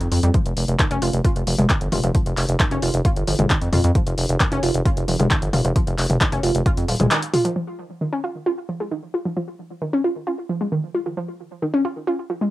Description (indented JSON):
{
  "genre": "driving peak-time techno",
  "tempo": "133 BPM",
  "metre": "4/4",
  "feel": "straight",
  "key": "F minor",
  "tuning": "A4 = 439 Hz",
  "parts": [
    { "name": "gritty driven synth bass", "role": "bass", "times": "0.0-7.1 s", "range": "Eb1 to F2", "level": "-20 LUFS", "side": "equal", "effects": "sidechain pumping" },
    { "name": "punchy analog drum machine", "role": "drums", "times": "0.0-7.7 s", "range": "crash cymbal, handclaps, hi-hat, toms", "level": "-23 LUFS", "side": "left 1 dB", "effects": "sidechain pumping on hats, low-pass filter on hats, cassette tape, low-pass filter on snare, sidechain pumping on toms, low-pass filter on toms, sidechain pumping on cymbals, low-pass filter on cymbals" },
    { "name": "analog pluck", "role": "riff", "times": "0.1-12.4 s", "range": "Eb3 to F4", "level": "-24 LUFS", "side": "equal", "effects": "chorus, overdrive, sidechain pumping, cassette tape, analog delay" },
    { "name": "electronic kick drum", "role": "drums", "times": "0.3-6.8 s", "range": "none", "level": "-21 LUFS", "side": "equal", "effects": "cassette tape" }
  ],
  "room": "light reverb",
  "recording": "home recording on cassette",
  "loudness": "-18 LUFS",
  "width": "side -16 dB against mid",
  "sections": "0.0-7.6 A section; 7.6-12.5 B section",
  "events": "band accent 7.1",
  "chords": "none"
}